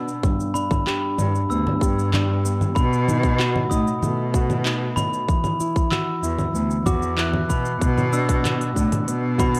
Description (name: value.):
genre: folktronica.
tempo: 95 BPM.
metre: 4/4.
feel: straight.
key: B minor.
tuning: A4 = 441 Hz.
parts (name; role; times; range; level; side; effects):
nylon-string guitar; arpeggios; 0.0-9.6 s; G2 to G4; -28 LUFS; equal; low-pass filter, digital delay.
rich cello; bass; 0.0-9.6 s; D2 to B2; -26 LUFS; equal; none.
organic electronic drum kit; drums; 0.1-9.6 s; cabasa, congas, handclaps, hi-hat; -29 LUFS; equal; overdrive.
electronic kick drum; drums; 0.2-9.5 s; none; -25 LUFS; equal; overdrive.
glockenspiel with soft plastic mallets; second line; 0.5-9.6 s; B5 to F#6; -30 LUFS; equal; digital delay.
room: light reverb, small room ambience.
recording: dark, warm production.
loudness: -22 LUFS.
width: mono.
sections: 0.0-9.6 A section.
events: filter sweep on nylon-string guitar 0.0-9.6.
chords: 0.2 G; 2.8 B7; 5.3 Esus2; 7.8 Bm.